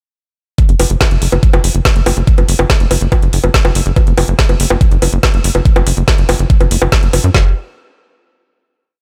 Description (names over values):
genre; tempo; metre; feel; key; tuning
psychedelic trance; 142 BPM; 4/4; straight; unclear; A4 = 440 Hz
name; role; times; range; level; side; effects
garage drum kit; drums; 0.6-7.4 s; kick drum, snare drum; -13 LUFS; equal; none
garage drum kit; drums; 0.6-7.3 s; bongos, hi-hat, snare drum; -18 LUFS; equal; none
tight sequencer bass; bass; 0.7-7.5 s; F#1 to F#2; -16 LUFS; equal; none
room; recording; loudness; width
little or no reverb; none; -12 LUFS; mono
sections
0.6-7.3 drop; 7.3-9.0 final note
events
drop 0.6-7.3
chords
none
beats
| 0.58 1.01 1.43 1.85 | 2.27 2.70 3.12 3.54 | 3.96 4.39 4.81 5.23 | 5.65 6.08 6.50 6.92 | 7.34